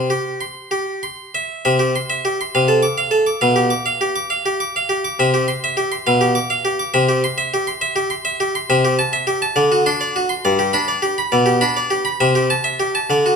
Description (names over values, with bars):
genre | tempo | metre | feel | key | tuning
classical, baroque-style suite movement for harpsichord | 68 BPM (dotted quarters) | 6/8 | rubato | C major, G major from 8.7 s | A4 = 436 Hz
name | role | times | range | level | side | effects
harpsichord | solo | 0.0-13.4 s | G2 to D6 | -16 LUFS | equal | none
room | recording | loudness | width
moderate large studio reverb, RT60 1.4 s | none | -16 LUFS | side -6 dB against mid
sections
0.0-1.6 A section; 1.6-13.4 B section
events
none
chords
0.0 C; 2.5 Dm7/C; 3.4 G7/B; 5.2 C; 6.1 G7/B; 7.0 C; 8.7 Am7/C; 9.6 D7; 10.4 G; 11.3 G/B; 12.2 Am7/C